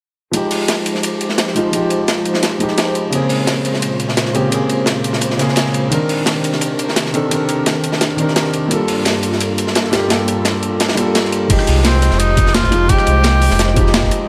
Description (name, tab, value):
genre	liquid drum and bass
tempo	172 BPM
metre	4/4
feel	straight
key	F dorian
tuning	A4 = 441 Hz
part	dark baby grand piano	accompaniment	0.3-14.3 s	Db3 to Bb4	-20 LUFS	equal	low-pass filter
part	airy breathy pad	sustained chords	0.8-14.3 s	G2 to Eb5	-26 LUFS	equal	chorus
part	breakbeat sampler-style drum kit	drums	0.3-14.2 s	crash cymbal, hi-hat, rim click, snare drum	-24 LUFS	equal	overdrive
part	crunchy breakbeat drum kit	drums	0.3-14.2 s	hi-hat, ride cymbal, snare drum	-22 LUFS	equal	high-pass filter on cymbals, high-pass filter on hats, high-pass filter on snare, high-pass filter on room
part	sub bass with octave	bass	11.5-14.1 s	F1 to C2	-17 LUFS	equal	none
part	electronic kick drum	drums	11.5-14.1 s	none	-18 LUFS	equal	overdrive
part	breathy tenor saxophone	melody	11.8-13.9 s	C4 to G4	-20 LUFS	equal	none
room	light reverb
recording	none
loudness	-16 LUFS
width	mono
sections	0.3-11.5 A section; 11.5-14.3 B section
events	filter sweep on grand piano 0.3-11.5; drop 11.5-14.3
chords	0.3 Fm9; 3.1 Bbm9; 5.9 Cm9; 8.7 Gm9; 11.5 Fm9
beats	| 0.34 0.69 1.03 1.38 | 1.73 2.08 2.43 2.78 | 3.13 3.48 3.83 4.17 | 4.52 4.87 5.22 5.57 | 5.92 6.27 6.62 6.96 | 7.31 7.66 8.01 8.36 | 8.71 9.06 9.41 9.76 | 10.10 10.45 10.80 11.15 | 11.50 11.85 12.20 12.55 | 12.89 13.24 13.59 13.94